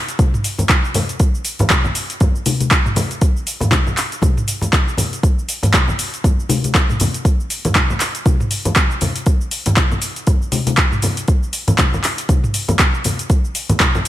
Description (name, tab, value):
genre	house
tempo	119 BPM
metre	4/4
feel	swing 58% on 16ths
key	none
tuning	none
part	afro-pop drum kit	drums	0.1-14.1 s	cabasa, handclaps, hi-hat, toms	-18 LUFS	equal	studio reverb
part	electronic kick drum	drums	0.2-13.9 s	none	-15 LUFS	equal	overdrive, studio reverb
part	congas	percussion	0.2-14.0 s	none	-20 LUFS	left 2 dB	none
room	digital ambience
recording	none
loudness	-14 LUFS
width	side -13 dB against mid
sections	0.0-14.1 A section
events	none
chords	none